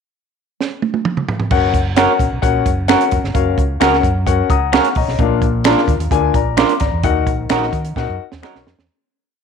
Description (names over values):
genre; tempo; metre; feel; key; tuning
uptempo 1960s-style soul; 130 BPM; 4/4; straight; F# major; A4 = 440 Hz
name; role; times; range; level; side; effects
compact cocktail drum kit; drums; 0.6-8.9 s; crash cymbal, hi-hat, kick drum, snare drum, toms; -18 LUFS; right 3 dB; none
clear concert grand piano; accompaniment; 1.5-8.7 s; A#2 to D#6; -18 LUFS; left 12 dB; none
fingered electric bass; bass; 1.5-8.9 s; E#1 to D#3; -20 LUFS; equal; none
electric guitar through a small old amp; stabs; 2.0-8.6 s; C#4 to A#4; -19 LUFS; right 11 dB; none
finger snap; percussion; 2.0-8.5 s; none; -25 LUFS; left 10 dB; none
room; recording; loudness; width
moderate plate reverb, RT60 1.3 s, small room ambience; 1960s-style stereo with parts hard left and right; -14 LUFS; side -6 dB against mid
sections
0.0-1.5 pickup bar; 1.5-8.9 verse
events
drum fill 0.6-1.5, 8.0-8.9; grand piano fill 4.3-5.2; fade-out 7.0-8.9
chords
0.0 N.C.; 1.5 F#; 5.2 A#; 7.0 D#m